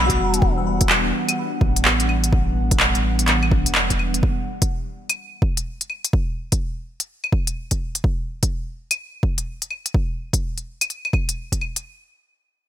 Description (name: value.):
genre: future garage.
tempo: 126 BPM.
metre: 4/4.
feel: swing 63% on 16ths.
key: E minor.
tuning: A4 = 439 Hz.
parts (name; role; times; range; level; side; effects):
dark upright piano; accompaniment; 0.0-0.9 s; E4 to F#4; -30 LUFS; left 5 dB; sidechain pumping, low-pass filter, ping-pong delay.
airy breathy pad; sustained chords; 0.0-4.2 s; E3 to F#5; -25 LUFS; equal; chorus, vintage 12-bit sampler grit, sidechain pumping.
soft dub sub bass; bass; 0.0-4.2 s; E1 to B1; -22 LUFS; equal; sidechain pumping.
electronic kick drum; drums; 0.1-11.6 s; none; -21 LUFS; equal; overdrive.
organic electronic drum kit; drums; 0.1-11.8 s; claves, handclaps, hi-hat; -21 LUFS; left 1 dB; gated reverb.
room: light reverb.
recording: bright 1980s-style digital production.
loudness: -19 LUFS.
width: side -11 dB against mid.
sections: 0.0-11.8 A section.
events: none.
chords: 0.0 Em9.